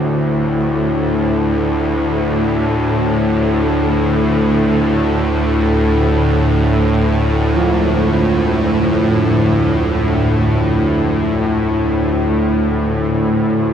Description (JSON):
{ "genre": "ambient", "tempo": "free time", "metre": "none", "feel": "none", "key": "D minor", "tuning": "A4 = 438 Hz", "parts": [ { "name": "carillon bells", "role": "arpeggios", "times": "0.0-13.7 s", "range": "F3 to F4", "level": "-22 LUFS", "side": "right 3 dB", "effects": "diffuse ambient delay" }, { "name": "bowed-like drone", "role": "drone", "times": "0.0-13.7 s", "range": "D2 to A2", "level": "-13 LUFS", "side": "equal", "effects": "built-in reverb" }, { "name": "quartz singing bowl", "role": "texture", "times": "0.0-13.7 s", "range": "none", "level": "barely audible", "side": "none", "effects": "none" } ], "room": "wet cathedral reverb, RT60 5.6 s", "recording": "dark, warm production", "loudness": "-13 LUFS", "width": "side -8 dB against mid", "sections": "0.0-13.7 A section", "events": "fade-in on church bells 0.0-13.7", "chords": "0.0 Dm" }